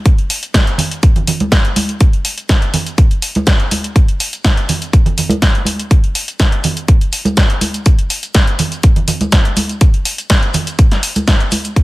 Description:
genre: house.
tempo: 123 BPM.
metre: 4/4.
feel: straight.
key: none.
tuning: none.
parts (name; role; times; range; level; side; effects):
electronic kick drum; drums; 0.1-11.8 s; none; -10 LUFS; equal; none.
punchy analog drum machine; drums; 0.1-11.8 s; hi-hat, snare drum; -17 LUFS; equal; sidechain pumping on hats, sidechain pumping on cymbals.
tube shaker and congas; percussion; 0.1-11.7 s; none; -18 LUFS; right 2 dB; sidechain pumping on perc, low-pass filter on perc.
room: little or no reverb.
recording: none.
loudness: -11 LUFS.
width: side -19 dB against mid.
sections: 0.0-11.8 A section.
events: filter sweep on drum 0.0-11.8.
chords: none.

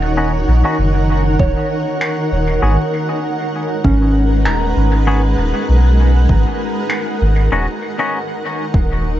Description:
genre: ambient dub.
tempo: 98 BPM.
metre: 4/4.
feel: swing 56% on 16ths.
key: G# minor.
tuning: A4 = 440 Hz.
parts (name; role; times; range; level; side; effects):
granular cloud pad; sustained chords; 0.0-9.2 s; D#3 to F#5; -19 LUFS; right 1 dB; built-in reverb.
soft dub sub bass; bass; 0.0-9.2 s; D#1 to B1; -14 LUFS; equal; none.
clean electric guitar; stabs; 0.2-8.2 s; B3 to G#4; -24 LUFS; left 2 dB; low-pass filter, dub echo.
soft synth bell; arpeggios; 1.4-7.5 s; C#4 to A#5; -23 LUFS; equal; chorus, dub echo.
electronic kick drum; drums; 1.4-8.9 s; none; -17 LUFS; equal; overdrive.
finger snaps; drums; 2.0-7.0 s; none; -26 LUFS; equal; dub echo.
room: light reverb.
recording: vinyl crackle, nothing above 7.6 kHz.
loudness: -13 LUFS.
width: side -13 dB against mid.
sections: 0.0-9.2 A section.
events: filter sweep on clean electric guitar 0.0-9.2.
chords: 0.0 D#m7; 2.6 G#m7; 7.5 D#m7.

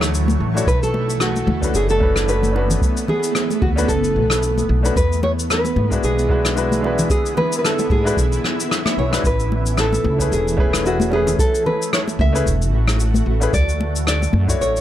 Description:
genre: sunset chillout.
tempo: 112 BPM.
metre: 4/4.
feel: swing 56% on 16ths.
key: A major.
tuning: A4 = 440 Hz.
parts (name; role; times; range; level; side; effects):
nylon-string guitar; melody; 0.0-14.8 s; F#4 to E5; -22 LUFS; right 1 dB; tape echo.
shimmering ambient pad; sustained chords; 0.0-14.8 s; D3 to C#5; -25 LUFS; right 2 dB; chorus, built-in reverb, phaser.
upright bass; bass; 0.0-14.8 s; E1 to G#2; -20 LUFS; equal; none.
rim click and cabasa; drums; 0.0-14.8 s; none; -24 LUFS; left 2 dB; none.
congas; percussion; 0.3-14.5 s; none; -24 LUFS; left 2 dB; none.
clear concert grand piano; accompaniment; 0.5-14.8 s; G#3 to C#5; -25 LUFS; left 2 dB; auto-pan, analog delay.
electronic kick drum; drums; 0.7-14.6 s; none; -21 LUFS; equal; none.
room: small room ambience.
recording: none.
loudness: -16 LUFS.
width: side -12 dB against mid.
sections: 0.0-14.8 A section.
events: drum fill 8.4-9.2.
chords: 0.0 Dmaj7; 0.7 Bm9; 5.0 E7; 9.2 Amaj7; 13.5 Dmaj7.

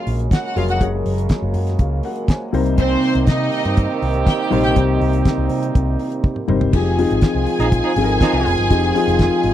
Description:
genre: disco.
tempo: 122 BPM.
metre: 4/4.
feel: straight.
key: F minor.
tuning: A4 = 440 Hz.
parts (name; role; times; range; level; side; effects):
dark studio string section; second line; 0.0-9.5 s; C4 to Ab5; -22 LUFS; right 2 dB; none.
dark baby grand piano; accompaniment; 0.0-9.5 s; C3 to Ab5; -21 LUFS; left 4 dB; none.
mellow French horn section; sustained chords; 0.0-9.5 s; C3 to F4; -26 LUFS; right 3 dB; none.
picked electric bass with an envelope filter; bass; 0.1-9.5 s; F1 to C3; -20 LUFS; equal; none.
damped 70s drum kit; drums; 0.1-9.5 s; crash cymbal, hi-hat, kick drum, snare drum, toms; -16 LUFS; equal; none.
mellow horn section; stabs; 2.8-8.5 s; Eb3 to Ab4; -24 LUFS; right 7 dB; none.
room: little or no reverb.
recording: dry, close 1970s-style studio recording.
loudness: -15 LUFS.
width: side -11 dB against mid.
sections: 0.0-6.7 A section; 6.7-9.5 B section.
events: drum fill 6.2-6.7.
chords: 0.0 Gbadd9; 2.5 Cm7; 6.7 Fm7.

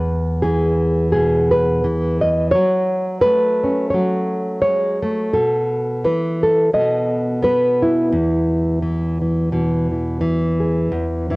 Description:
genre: folk, solo fingerstyle acoustic guitar.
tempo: 86 BPM.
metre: 4/4.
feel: swing 56% on 8ths.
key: E major.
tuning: A4 = 439 Hz.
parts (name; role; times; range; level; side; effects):
nylon-string guitar; solo; 0.0-11.4 s; E2 to D#5; -16 LUFS; equal; cassette tape.
room: light reverb, small room ambience.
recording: home recording on cassette.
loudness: -16 LUFS.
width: side -24 dB against mid.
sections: 0.0-10.9 A section.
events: none.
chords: 0.0 E; 2.5 F#m; 5.3 B7sus4; 6.7 B7; 8.1 E5.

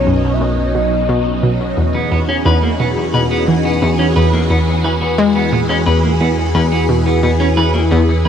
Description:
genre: ambient, sequencer-driven space music.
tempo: 88 BPM.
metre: 4/4.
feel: straight.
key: unclear.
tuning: A4 = 435 Hz.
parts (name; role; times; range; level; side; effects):
soft octave-layered synth lead; melody; 0.0-1.4 s; C#5 to E5; -24 LUFS; left 1 dB; chorus, phaser, ping-pong delay.
phased string machine; sustained chords; 0.0-8.3 s; B2 to G#4; -18 LUFS; equal; ensemble chorus, phaser.
fat analog bass; bass; 0.0-8.3 s; B1 to E2; -19 LUFS; equal; none.
analog pluck; riff; 0.1-8.3 s; E2 to G#3; -17 LUFS; equal; chorus, ping-pong delay.
clean electric guitar; arpeggios; 1.9-8.3 s; A#3 to B4; -18 LUFS; right 1 dB; auto-pan, ping-pong delay.
room: wet huge ambient reverb, RT60 8.3 s.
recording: none.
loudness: -12 LUFS.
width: side -8 dB against mid.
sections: 0.0-8.3 A section.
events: none.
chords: 0.0 B; 1.8 E.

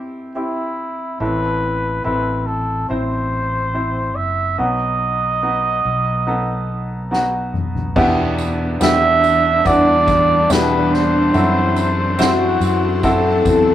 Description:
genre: pop ballad.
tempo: 71 BPM.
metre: 4/4.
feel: straight.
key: E minor from 8.0 s.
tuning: A4 = 439 Hz.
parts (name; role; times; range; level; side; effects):
clear flugelhorn; melody; 0.0-13.5 s; E4 to E5; -18 LUFS; right 2 dB; none.
clear grand piano; accompaniment; 0.0-13.7 s; A2 to C5; -21 LUFS; equal; none.
fretless electric bass; bass; 1.2-13.7 s; F#1 to F#2; -23 LUFS; equal; none.
soft-mallet drum kit; drums; 7.1-13.7 s; crash cymbal, kick drum, ride cymbal, snare drum, toms; -23 LUFS; left 1 dB; none.
warm French horn section; second line; 8.0-13.7 s; D4 to A4; -21 LUFS; left 3 dB; none.
ethereal airy pad; sustained chords; 9.2-13.7 s; E3 to A4; -21 LUFS; left 1 dB; ensemble chorus, built-in reverb.
tambourine; percussion; 8.4-13.7 s; none; -35 LUFS; right 6 dB; none.
room: wet studio reverb, RT60 0.5 s.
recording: rough rehearsal-room recording, tube saturation.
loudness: -15 LUFS.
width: side -12 dB against mid.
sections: 0.0-8.0 A section; 8.0-13.7 B section.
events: drum fill 7.1-8.0.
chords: 0.0 C/E; 1.2 Am; 4.6 B; 8.0 Em7; 11.3 F#m7b5.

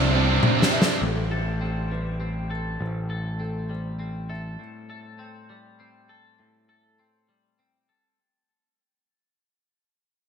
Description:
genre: post-rock.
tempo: 100 BPM.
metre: 3/4.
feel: straight.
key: A minor.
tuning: A4 = 440 Hz.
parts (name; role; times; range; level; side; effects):
shimmering ambient pad; sustained chords; 0.0-1.0 s; G4 to D6; -38 LUFS; right 2 dB; none.
felt-muted upright piano; arpeggios; 0.0-4.6 s; A4 to E5; -38 LUFS; right 3 dB; analog delay.
biting overdriven guitar; riff; 0.0-1.0 s; C3 to D4; -26 LUFS; right 12 dB; none.
cranked stack guitar; riff; 0.0-1.0 s; C3 to D4; -29 LUFS; left 9 dB; overdrive, ensemble chorus.
growling picked electric bass; bass; 0.0-4.6 s; A1 to C2; -27 LUFS; equal; overdrive.
oversized low-tuned drum kit; drums; 0.4-1.0 s; snare drum, toms; -24 LUFS; left 1 dB; none.
twangy electric guitar; arpeggios; 1.0-8.2 s; A2 to A4; -37 LUFS; left 3 dB; wide subtle chorus, analog delay.
room: moderate plate reverb, RT60 2.8 s.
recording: dreamy mix soaked in reverb.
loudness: -23 LUFS.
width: side -7 dB against mid.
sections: 0.0-1.0 A section; 1.0-8.2 B section.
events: drum fill 0.4-1.0; fade-out 1.0-8.2.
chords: 0.0 Csus2; 1.0 Am7.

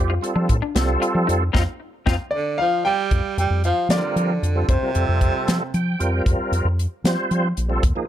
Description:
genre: electric jazz fusion.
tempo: 76 BPM (dotted quarters).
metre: 6/8.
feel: straight.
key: F mixolydian.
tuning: A4 = 440 Hz.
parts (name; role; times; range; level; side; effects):
bright tonewheel organ; accompaniment; 0.0-8.1 s; F3 to G5; -24 LUFS; right 2 dB; slow rotary speaker, chorus vibrato.
fingered electric bass; bass; 0.0-8.0 s; Bb1 to F3; -21 LUFS; equal; none.
semi-hollow electric guitar; stabs; 0.1-2.1 s; C4 to F4; -29 LUFS; left 8 dB; ensemble chorus, tape echo.
tight funk drum kit; drums; 0.2-8.0 s; hi-hat, kick drum, snare drum; -22 LUFS; equal; none.
warm baby grand piano; melody; 2.3-6.0 s; C5 to G5; -24 LUFS; left 2 dB; plate reverb.
bright tenor saxophone; second line; 2.3-6.0 s; C3 to G3; -26 LUFS; right 6 dB; none.
room: light reverb.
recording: dark, warm production.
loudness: -18 LUFS.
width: side -11 dB against mid.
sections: 0.0-3.1 A section; 3.1-8.1 B section.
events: band accent 1.5-3.1; tonewheel organ fill 5.5-6.3.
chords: 0.0 F13; 3.1 Fsus24.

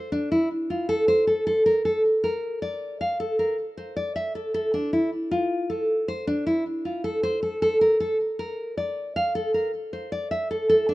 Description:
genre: hip hop.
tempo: 156 BPM.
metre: 4/4.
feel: half-time.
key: D minor.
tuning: A4 = 438 Hz.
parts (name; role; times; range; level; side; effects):
nylon-string guitar; solo; 0.0-10.9 s; D4 to F5; -22 LUFS; equal; low-pass filter, digital delay.
room: small room reverb.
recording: rough home demo mix.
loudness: -22 LUFS.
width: side -18 dB against mid.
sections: 0.0-10.9 A section.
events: none.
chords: none.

